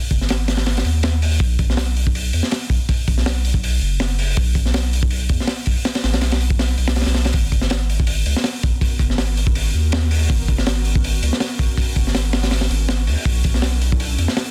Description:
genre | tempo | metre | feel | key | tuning
drum and bass, jungle | 162 BPM | 4/4 | swing 54% on 16ths | G# minor | A4 = 440 Hz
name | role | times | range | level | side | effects
saturated sub bass | bass | 0.1-14.3 s | F#1 to E2 | -22 LUFS | equal | none
crunchy breakbeat drum kit | drums | 0.1-14.5 s | hi-hat, kick drum, snare drum | -22 LUFS | equal | none
ethereal airy pad | sustained chords | 8.0-14.5 s | B3 to A#4 | -36 LUFS | equal | ensemble chorus, built-in reverb
room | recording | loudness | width
small room ambience | dense, heavily limited modern master | -19 LUFS | mono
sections
0.0-14.5 A section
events
none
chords
0.0 G#5; 1.4 N.C.; 7.3 G#m11; 13.3 Bm11

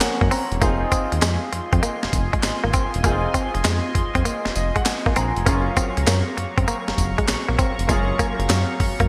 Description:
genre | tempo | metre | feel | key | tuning
R&B, new jack swing | 99 BPM | 4/4 | swing 67% on 16ths | F phrygian | A4 = 439 Hz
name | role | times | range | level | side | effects
clear concert grand piano | accompaniment | 0.0-9.1 s | F3 to Bb5 | -30 LUFS | equal | lush chorus
chorused pulse-width pad | sustained chords | 0.0-9.1 s | Gb3 to Db6 | -31 LUFS | equal | none
direct-recorded clean electric guitar | riff | 0.0-9.1 s | Gb3 to C4 | -28 LUFS | equal | analog chorus
breakbeat sampler-style drum kit | drums | 0.0-9.1 s | handclaps, hi-hat, kick drum, snare drum, tambourine | -25 LUFS | equal | gated reverb
smooth synth bass | bass | 0.2-9.1 s | E1 to Gb2 | -26 LUFS | equal | none
room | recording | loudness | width
moderate lush hall reverb, RT60 1.6 s | bright 1980s-style digital production | -21 LUFS | mono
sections
0.0-9.1 A section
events
grand piano fill 0.0-0.6, 4.3-5.5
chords
0.0 Gbmaj7; 0.6 Fm7; 5.5 Gbmaj7

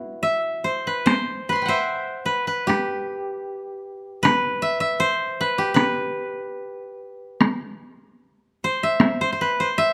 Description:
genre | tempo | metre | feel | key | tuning
japanese traditional, Japanese chamber music | 71-80 BPM | 2/4 | rubato | E hirajoshi | A4 = 438 Hz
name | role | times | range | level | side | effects
koto | melody | 0.0-9.9 s | E4 to C6 | -24 LUFS | equal | none
taiko ensemble | percussion | 1.1-9.2 s | none | -23 LUFS | equal | none
room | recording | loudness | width
light reverb | close, detailed microphones | -23 LUFS | mono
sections
0.0-1.1 A section; 1.1-9.9 B section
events
none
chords
none

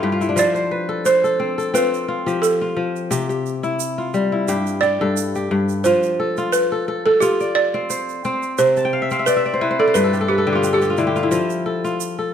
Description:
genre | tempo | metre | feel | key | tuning
west african traditional, West African string and xylophone music | 88 BPM | 4/4 | swing 54% on 16ths | F lydian | A4 = 440 Hz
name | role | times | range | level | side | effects
balafon | melody | 0.0-11.0 s | G4 to D5 | -19 LUFS | right 2 dB | none
kora | arpeggios | 0.0-12.3 s | G2 to A5 | -20 LUFS | left 3 dB | none
tube shaker | percussion | 0.2-12.2 s | none | -31 LUFS | right 14 dB | none
room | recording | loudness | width
moderate recital hall reverb, RT60 1.7 s | none | -17 LUFS | side -8 dB against mid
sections
0.0-5.8 A section; 5.8-12.3 B section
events
kora fill 0.0-0.4, 8.8-11.3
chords
0.4 F; 3.1 C; 4.5 G5; 5.8 F; 8.6 C; 9.9 G5; 11.3 F

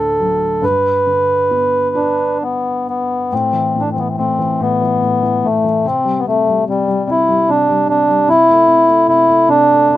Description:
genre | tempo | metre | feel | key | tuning
celtic folk | 63-76 BPM | 3/4 | rubato | unclear | A4 = 440 Hz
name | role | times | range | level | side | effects
mellow accordion | melody | 0.0-10.0 s | G3 to B4 | -12 LUFS | equal | none
felt-muted upright piano | accompaniment | 0.0-10.0 s | D2 to D4 | -21 LUFS | left 2 dB | none
room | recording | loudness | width
light reverb | rough home demo mix | -12 LUFS | side -14 dB against mid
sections
0.0-3.3 A section; 3.3-10.0 B section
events
none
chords
0.0 D; 0.6 G; 3.3 A5; 5.8 C5; 8.3 Am/C

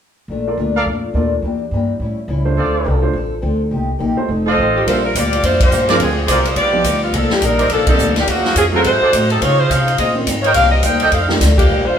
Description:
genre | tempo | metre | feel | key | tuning
jazz, big band swing | 211 BPM | 4/4 | swing 60% on 8ths | Bb major | A4 = 440 Hz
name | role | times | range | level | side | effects
picked old ladder-braced acoustic guitar | accompaniment | 0.3-11.9 s | F2 to A4 | -22 LUFS | left 4 dB | none
upright bass | bass | 0.3-12.0 s | F1 to Db3 | -19 LUFS | equal | none
warm grand piano | accompaniment | 0.5-11.4 s | D3 to D5 | -23 LUFS | right 2 dB | none
clear trumpet section | stabs | 0.7-11.1 s | Eb4 to G5 | -18 LUFS | right 2 dB | none
clear saxophone section | melody | 4.8-12.0 s | Db3 to G5 | -16 LUFS | equal | none
swinging big-band drum kit | drums | 4.9-11.6 s | hi-hat, kick drum, ride cymbal, snare drum | -19 LUFS | equal | none
room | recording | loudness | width
wet large studio reverb, RT60 0.9 s | band playing live in one room | -13 LUFS | side -8 dB against mid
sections
0.3-4.9 A section; 4.9-12.0 B section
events
band accent 5.6, 7.8, 11.5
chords
0.3 Bbmaj7; 1.4 Em7b5; 2.0 A7; 2.6 Dm7; 3.7 Cm7; 4.3 F7; 4.9 Bb6; 6.0 Dm7b5; 6.6 G7b13; 7.1 Cm9; 8.3 Ebm9; 8.8 Ab7b9; 9.4 Dbmaj9; 10.5 Cm7; 11.1 F13

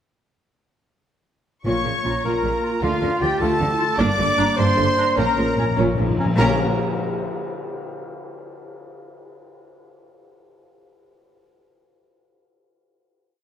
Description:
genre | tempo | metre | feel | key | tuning
cinematic, heroic adventure film score | 102 BPM (dotted quarters) | 6/8 | straight | unclear | A4 = 439 Hz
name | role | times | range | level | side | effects
timpani | percussion | 1.6-2.2, 5.2-6.6 s | Bb2 | -26 LUFS | left 2 dB | none
clear symphonic violin section | melody | 1.7-6.6 s | F5 to D6 | -30 LUFS | left 2 dB | none
clear symphonic violin section | second line | 1.7-6.6 s | F5 to D6 | -32 LUFS | left 3 dB | none
dark cor anglais | second line | 1.7-6.6 s | F4 to D5 | -27 LUFS | right 1 dB | none
dark studio viola section | accompaniment | 1.7-6.6 s | Db3 to F4 | -27 LUFS | right 1 dB | none
mellow French horn section | sustained chords | 1.7-6.6 s | A3 to F4 | -27 LUFS | left 2 dB | none
warm trumpet | stabs | 1.7-6.6 s | F4 to D5 | -26 LUFS | right 1 dB | none
clear symphonic cello section | bass | 1.7-6.6 s | G2 to D3 | -27 LUFS | right 2 dB | none
rich symphonic double bass section | bass | 1.7-6.6 s | G1 to D2 | -27 LUFS | right 2 dB | none
mellow flute section | second line | 2.0-6.6 s | Bb5 to A6 | -32 LUFS | left 2 dB | none
clear clarinet | second line | 2.1-6.6 s | Db4 to F4 | -32 LUFS | equal | none
cymbal swell and tam-tam | percussion | 4.0-7.9 s | none | -30 LUFS | left 2 dB | none
room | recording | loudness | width
wet scoring stage reverb, RT60 2.1 s | none | -18 LUFS | side -9 dB against mid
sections
1.7-6.4 theme; 6.4-7.6 final chord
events
timpani fill 5.2-6.4; band accent 6.4-6.8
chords
1.7 Bbm; 2.8 Dm; 4.0 Gm; 5.2 Bbm

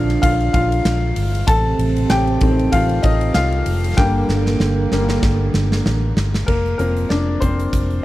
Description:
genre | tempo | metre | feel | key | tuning
piano-driven pop | 96 BPM | 4/4 | swing 56% on 16ths | unclear | A4 = 441 Hz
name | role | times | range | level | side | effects
mellow French horn section | second line | 0.0-6.1 s | C3 to D4 | -23 LUFS | right 6 dB | none
clear upright piano | accompaniment | 0.0-8.0 s | D3 to A5 | -20 LUFS | left 3 dB | none
vintage muted fingered electric bass | bass | 0.0-8.0 s | F1 to C2 | -19 LUFS | equal | none
huge arena drum kit | drums | 0.1-8.0 s | crash cymbal, hi-hat, kick drum, ride cymbal, snare drum | -21 LUFS | equal | none
room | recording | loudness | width
small room ambience | none | -15 LUFS | side -16 dB against mid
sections
0.0-6.5 A section; 6.5-8.0 B section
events
upright piano solo 0.0-6.5, 6.5-8.0; drum fill 4.0-6.5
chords
0.0 Bbsus2; 1.5 Adim; 4.0 Gm; 6.5 Fsus4

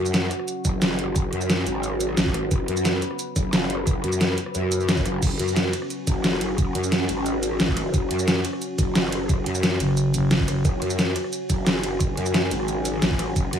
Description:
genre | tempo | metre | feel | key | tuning
dark technical drum and bass | 177 BPM | 4/4 | straight | F# minor | A4 = 440 Hz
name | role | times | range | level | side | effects
deep dark ambient pad | sustained chords | 0.0-13.6 s | C#4 to A5 | -29 LUFS | left 2 dB | chorus, built-in reverb, sidechain pumping
growl bass | bass | 0.0-13.6 s | F#1 to F#2 | -26 LUFS | equal | chorus, overdrive
dubstep drum kit | drums | 0.1-13.6 s | crash cymbal, hi-hat, ride cymbal, rim click, shaker, snare drum | -24 LUFS | right 1 dB | none
electronic kick drum | drums | 0.6-13.4 s | none | -24 LUFS | equal | none
growling FM bass | bass | 9.8-10.6 s | F#1 | -21 LUFS | equal | none
room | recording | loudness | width
light reverb | none | -21 LUFS | side -8 dB against mid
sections
0.0-13.6 A section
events
none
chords
0.0 F#5

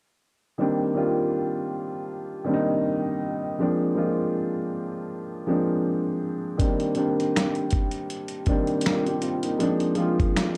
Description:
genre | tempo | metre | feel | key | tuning
lo-fi hip hop | 80 BPM | 4/4 | swing 60% on 16ths | C minor | A4 = 439 Hz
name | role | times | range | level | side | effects
dark upright piano | accompaniment | 0.6-10.6 s | Eb3 to Bb4 | -26 LUFS | equal | cassette tape, low-pass filter
dusty soul sampler-style drum kit | drums | 6.6-10.6 s | finger snaps, hi-hat, kick drum, snare drum | -28 LUFS | equal | none
room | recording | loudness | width
moderate studio reverb, RT60 0.6 s | dark, warm production | -26 LUFS | mono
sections
0.6-10.6 A section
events
none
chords
0.6 Cm7; 3.6 Bb9; 6.6 Cm7; 9.6 Bb9

